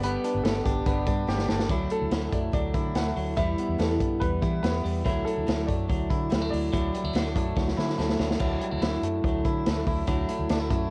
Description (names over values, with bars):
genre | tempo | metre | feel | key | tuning
jangly indie pop | 143 BPM | 4/4 | straight | unclear | A4 = 443 Hz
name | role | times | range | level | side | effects
warm upright piano | melody | 0.0-7.9 s | G4 to F#5 | -36 LUFS | equal | cassette tape
warm studio violin section | second line | 0.0-1.4 s | G3 to B3 | -43 LUFS | equal | none
picked twelve-string acoustic guitar | accompaniment | 0.0-10.9 s | E2 to G4 | -36 LUFS | equal | subtle chorus, cassette tape
clean electric guitar | arpeggios | 0.0-10.9 s | F#3 to G4 | -33 LUFS | equal | cassette tape, analog delay
vintage muted fingered electric bass | bass | 0.0-10.9 s | G1 to E3 | -33 LUFS | equal | none
vintage drum kit | drums | 0.0-10.8 s | crash cymbal, hi-hat, kick drum, snare drum | -31 LUFS | equal | none
room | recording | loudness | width
little or no reverb | home recording on cassette | -27 LUFS | mono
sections
0.0-1.7 A section; 1.7-8.4 B section; 8.4-10.9 C section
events
drum fill 1.3-1.7, 7.6-8.4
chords
0.0 G; 1.7 Dadd9; 3.4 Em; 5.1 Dadd9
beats
| 0.03 0.45 0.86 1.28 | 1.70 2.12 2.54 2.96 | 3.38 3.80 4.22 4.64 | 5.06 5.48 5.90 6.32 | 6.73 7.15 7.57 7.99 | 8.41 8.83 9.25 9.66 | 10.08 10.50